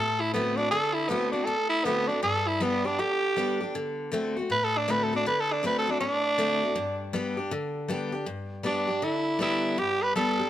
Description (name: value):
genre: rock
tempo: 159 BPM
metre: 4/4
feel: swing 64% on 8ths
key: G major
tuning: A4 = 439 Hz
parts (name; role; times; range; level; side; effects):
- breathy tenor saxophone; melody; 0.0-10.5 s; B3 to B4; -26 LUFS; right 1 dB; slapback echo
- picked steel-string acoustic guitar; accompaniment; 0.0-10.5 s; G2 to G4; -30 LUFS; left 2 dB; none
room: light reverb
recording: none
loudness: -25 LUFS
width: side -12 dB against mid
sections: 0.0-8.3 A section; 8.3-10.5 B section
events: tenor saxophone solo 0.0-8.3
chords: 0.0 D7; 2.2 G; 3.7 D7; 6.8 G